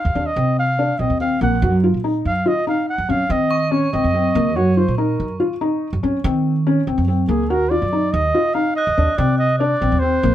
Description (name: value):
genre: contemporary instrumental, chamber music in an uneven meter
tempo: 143 BPM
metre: 7/4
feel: straight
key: unclear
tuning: A4 = 440 Hz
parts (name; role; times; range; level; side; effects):
- warm flugelhorn; melody; 0.0-10.3 s; Ab4 to Gb5; -20 LUFS; right 2 dB; none
- upright bass; bass; 0.0-10.3 s; Bb1 to Eb3; -20 LUFS; right 2 dB; none
- felt-muted upright piano; arpeggios; 0.2-10.3 s; Bb3 to Gb4; -20 LUFS; left 2 dB; none
- crotales; texture; 3.5-4.3, 8.8-9.5 s; Db6 to Gb6; -32 LUFS; right 2 dB; none
room: light reverb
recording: none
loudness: -16 LUFS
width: side -12 dB against mid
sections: 0.0-10.3 A section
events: none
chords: 0.0 Eb5; 1.6 Gb; 7.5 Ebm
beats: 0.36 0.78 1.20 | 1.62 2.04 2.46 2.88 3.30 3.72 4.14 | 4.56 4.98 5.40 5.82 6.24 6.66 7.08 | 7.50 7.92 8.34 8.76 9.18 9.60 10.02